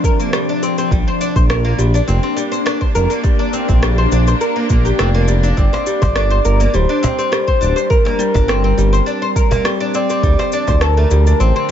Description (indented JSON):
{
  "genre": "organic downtempo",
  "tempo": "103 BPM",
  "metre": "4/4",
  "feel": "swing 53% on 16ths",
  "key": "unclear",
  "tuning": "A4 = 440 Hz",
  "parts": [
    { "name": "bowed-like drone", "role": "sustained chords", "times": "0.0-11.7 s", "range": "C3 to D4", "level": "-22 LUFS", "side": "left 2 dB", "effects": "built-in reverb, phaser, sidechain pumping" },
    { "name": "oud", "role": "arpeggios", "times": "0.0-11.7 s", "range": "G3 to C5", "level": "-20 LUFS", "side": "left 1 dB", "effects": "ping-pong delay" },
    { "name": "electronic kick drum", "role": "drums", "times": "0.0-10.8 s", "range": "none", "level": "-16 LUFS", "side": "equal", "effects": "overdrive" },
    { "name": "electronic shaker and rim click", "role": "drums", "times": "0.0-11.5 s", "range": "none", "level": "-24 LUFS", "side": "equal", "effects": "overdrive" },
    { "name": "smooth gliding synth bass", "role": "bass", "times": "0.9-11.5 s", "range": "D1 to D2", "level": "-14 LUFS", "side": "equal", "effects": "sidechain pumping" },
    { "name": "breathy flute-like synth lead", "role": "melody", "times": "5.6-11.7 s", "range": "Bb4 to D5", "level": "-19 LUFS", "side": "equal", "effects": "chorus, ping-pong delay" },
    { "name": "cajon", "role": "percussion", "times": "5.7-11.7 s", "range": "none", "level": "-22 LUFS", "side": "left 1 dB", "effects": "none" }
  ],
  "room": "light reverb, digital ambience",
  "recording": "nothing above 7.8 kHz",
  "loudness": "-12 LUFS",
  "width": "side -9 dB against mid",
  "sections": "0.0-11.7 A section",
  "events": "none",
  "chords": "0.0 C5; 0.9 Bb; 5.6 Gm; 10.2 Dm7"
}